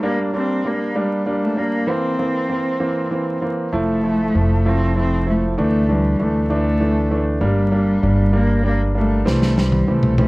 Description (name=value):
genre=six-eight pop ballad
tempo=65 BPM (dotted quarters)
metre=6/8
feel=straight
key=F major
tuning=A4 = 440 Hz
part: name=warm cello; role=melody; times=0.0-10.3 s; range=G3 to C4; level=-21 LUFS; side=equal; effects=none
part: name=bright concert grand piano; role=accompaniment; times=0.0-10.3 s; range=E3 to E4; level=-21 LUFS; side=right 1 dB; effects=none
part: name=upright bass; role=bass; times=3.7-10.3 s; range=F1 to D2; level=-19 LUFS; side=equal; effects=none
part: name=modern studio drum kit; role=drums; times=9.3-10.3 s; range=snare drum, toms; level=-20 LUFS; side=equal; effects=none
room=moderate studio reverb, RT60 0.7 s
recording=worn, warbling old tape, cassette tape, vinyl crackle, warbly pitch drift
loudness=-16 LUFS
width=side -22 dB against mid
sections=0.0-10.3 A section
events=drum fill 9.3-10.3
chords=0.0 Bb6; 1.9 C7; 3.7 Fmaj7; 5.6 Dsus2; 7.4 Gm; 9.3 C